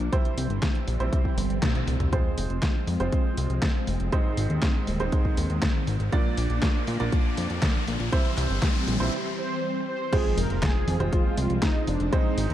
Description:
italo disco; 120 BPM; 4/4; straight; F dorian; A4 = 440 Hz
phased string machine; sustained chords; 0.0-12.5 s; Eb3 to D4; -32 LUFS; equal; ensemble chorus, phaser
clear baby grand piano; stabs; 0.0-12.5 s; Ab2 to D5; -32 LUFS; right 4 dB; low-pass filter, tape echo
fat analog bass; bass; 0.0-12.5 s; Eb1 to Bb2; -27 LUFS; equal; tube saturation
detuned 8-bit digital drum machine; drums; 0.0-12.5 s; congas, crash cymbal, handclaps, hi-hat, snare drum, toms; -31 LUFS; left 1 dB
electronic kick drum; drums; 0.1-12.2 s; -25 LUFS; equal; overdrive
riser and impact; sound effects; 4.1-12.1 s; -37 LUFS; left 1 dB
mellow synth brass; melody; 9.4-12.5 s; D4 to C5; -30 LUFS; right 1 dB; chorus, digital delay
light reverb; dark, warm production; -23 LUFS; side -12 dB against mid
0.0-2.1 A section; 2.1-10.1 B section; 10.1-12.5 C section
drum fill 1.6-2.1; band accent 1.6; riser 4.1-9.1; break 9.1-10.1; impact 10.1-12.1
0.1 C; 2.1 Fm; 4.1 Ab; 6.1 Bb; 8.1 C; 10.1 Fm
| 0.13 0.63 1.13 1.63 | 2.13 2.63 3.13 3.63 | 4.13 4.63 5.13 5.63 | 6.13 6.63 7.13 7.63 | 8.13 8.63 9.13 9.63 | 10.13 10.63 11.13 11.63 | 12.13

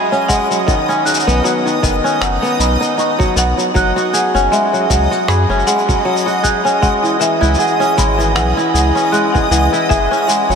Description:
folktronica; 78 BPM; 4/4; swing 56% on 16ths; A4 = 439 Hz
marimba with hard mallets; second line; 0.0-10.6 s; D#5 to F#6; -19 LUFS; left 1 dB; vintage 12-bit sampler grit, ping-pong delay
kora; arpeggios; 0.0-10.6 s; D#3 to G#4; -15 LUFS; equal; ping-pong delay
backwards swelling texture; texture; 0.0-10.6 s; D#5 to D#6; -23 LUFS; right 1 dB; built-in reverb
electronic shaker and finger snaps; drums; 0.1-10.6 s; -23 LUFS; left 2 dB; overdrive
electronic kick drum; drums; 0.3-10.1 s; -18 LUFS; equal; overdrive
warm sub bass; bass; 1.3-10.6 s; F#1 to F#2; -17 LUFS; equal
wet huge ambient reverb, RT60 8.6 s; dreamy mix soaked in reverb; -12 LUFS; side -6 dB against mid
0.0-10.6 A section
0.0 F#sus2; 0.7 Badd9; 6.8 C#m; 9.9 F#sus2
| 0.67 1.44 2.21 2.98 | 3.75 4.52 5.29 6.05 | 6.82 7.59 8.36 9.13 | 9.90

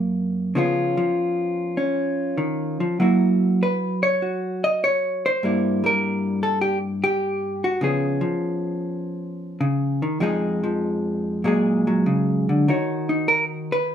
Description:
solo jazz; 99 BPM; 4/4; swing 69% on 8ths, rubato; Db mixolydian; A4 = 440 Hz
vintage hollow-body jazz guitar; solo; 0.0-13.9 s; F2 to Eb5; -20 LUFS; equal
moderate studio reverb, RT60 0.8 s; minimal, uncompressed stereo recording; -20 LUFS; side -9 dB against mid
0.0-13.9 A section
0.0 Gb7; 0.5 Db7; 3.0 Gb7; 5.4 Gm6; 7.8 Db7; 10.2 Fm7; 11.4 Bb7alt; 12.7 Ebm7
| 0.55 1.15 1.76 2.38 | 3.00 3.62 4.22 4.83 | 5.43 6.02 6.61 7.20 | 7.80 8.39 8.99 9.60 | 10.21 10.82 11.44 12.06 | 12.67 13.28 13.88

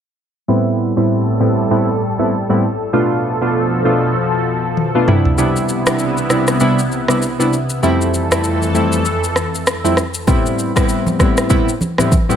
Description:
afrobeats; 98 BPM; 4/4; swing 58% on 16ths; A minor; A4 = 440 Hz
warm analog keys; accompaniment; 0.5-12.4 s; F2 to F4; -15 LUFS; equal; chorus, low-pass filter
lush unison pad; sustained chords; 0.8-10.3 s; F2 to A4; -19 LUFS; equal; chorus, phaser, low-pass filter
afro-pop drum kit; drums; 4.8-12.4 s; kick drum, rim click, shaker, toms; -18 LUFS; equal
congas; percussion; 10.3-12.3 s; -21 LUFS; right 2 dB
light reverb; -13 LUFS; side -8 dB against mid
0.5-10.3 A section; 10.3-12.4 B section
filter sweep 0.5-10.3; drum fill 4.8-5.4
0.5 Am7; 2.9 Bm7b5; 5.1 Cmaj7; 7.8 Fmaj7; 10.3 Am7
| 0.49 1.10 1.71 2.32 | 2.94 3.55 4.16 4.77 | 5.38 6.00 6.61 7.22 | 7.83 8.45 9.06 9.67 | 10.28 10.89 11.51 12.12

